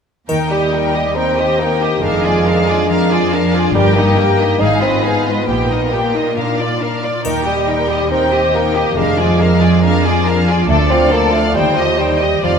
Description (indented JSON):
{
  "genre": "classical, dramatic, fast romantic movement for symphony orchestra",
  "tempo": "139 BPM",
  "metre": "4/4",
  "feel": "straight",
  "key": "Eb major",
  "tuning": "A4 = 443 Hz",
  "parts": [
    { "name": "warm symphonic violin section", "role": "melody", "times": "0.3-12.6 s", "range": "D5 to G5", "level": "-22 LUFS", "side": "left 2 dB", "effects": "none" },
    { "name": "warm symphonic violin section", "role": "second line", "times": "0.3-12.6 s", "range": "G4 to Eb5", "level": "-20 LUFS", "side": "left 2 dB", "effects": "none" },
    { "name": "mellow bassoon", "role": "accompaniment", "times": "0.3-12.6 s", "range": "Eb3 to Eb4", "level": "-18 LUFS", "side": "right 1 dB", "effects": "none" },
    { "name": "rich symphonic viola section", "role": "accompaniment", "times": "0.3-12.6 s", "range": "Bb3 to G4", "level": "-21 LUFS", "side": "right 1 dB", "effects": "none" },
    { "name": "concert harp", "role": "arpeggios", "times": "0.3-12.6 s", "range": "F2 to F5", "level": "-20 LUFS", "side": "left 4 dB", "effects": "none" },
    { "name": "rich symphonic double bass section", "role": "bass", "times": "0.3-12.6 s", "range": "F1 to Eb2", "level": "-24 LUFS", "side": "right 2 dB", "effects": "none" },
    { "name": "warm symphonic cello section", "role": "bass", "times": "0.3-12.6 s", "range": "D2 to Bb2", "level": "-20 LUFS", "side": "right 2 dB", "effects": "none" },
    { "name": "triangle", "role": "percussion", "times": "0.3-1.1, 7.2-8.1 s", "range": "none", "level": "-36 LUFS", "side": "left 4 dB", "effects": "none" }
  ],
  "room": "wet concert hall reverb, RT60 1.9 s",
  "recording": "none",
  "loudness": "-12 LUFS",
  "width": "side -6 dB against mid",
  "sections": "0.3-12.6 A section",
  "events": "none",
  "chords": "0.3 Eb; 2.0 Bb7/F; 3.7 Eb/G; 4.6 Fm7b5/Ab; 5.5 Eb/Bb; 6.4 Bb; 7.2 Eb; 9.0 Bb7/F; 10.7 Dm; 11.5 Cm/Eb",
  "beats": "| 0.29 0.73 1.16 1.60 | 2.03 2.46 2.89 3.32 | 3.75 4.17 4.60 5.04 | 5.48 5.92 6.36 6.81 | 7.25 7.68 8.11 8.55 | 8.98 9.40 9.83 10.26 | 10.69 11.12 11.55 11.99 | 12.43"
}